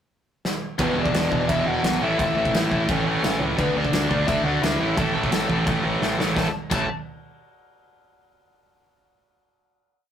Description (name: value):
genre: punk rock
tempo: 172 BPM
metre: 4/4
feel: straight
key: A major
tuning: A4 = 440 Hz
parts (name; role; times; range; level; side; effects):
- big rock drum kit; drums; 0.5-6.8 s; crash cymbal, kick drum, snare drum; -26 LUFS; right 1 dB; none
- bluesy overdriven lead guitar; melody; 0.8-6.9 s; B3 to A5; -26 LUFS; left 3 dB; distortion
- sludgy distorted guitar; riff; 0.8-6.9 s; E2 to D4; -24 LUFS; right 3 dB; overdrive
- tight distorted guitar; riff; 0.8-6.9 s; E2 to D4; -28 LUFS; left 6 dB; distortion
- growling picked electric bass; bass; 0.8-6.9 s; E1 to D2; -30 LUFS; left 1 dB; overdrive
room: light reverb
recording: rough rehearsal-room recording, tube saturation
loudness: -20 LUFS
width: side -9 dB against mid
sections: 0.0-0.8 pickup bar; 0.8-6.4 riff; 6.4-7.7 final chord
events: drum fill 0.4-0.8, 6.0-6.4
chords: 0.0 N.C.; 0.8 E5; 2.0 A; 3.6 D; 4.8 A5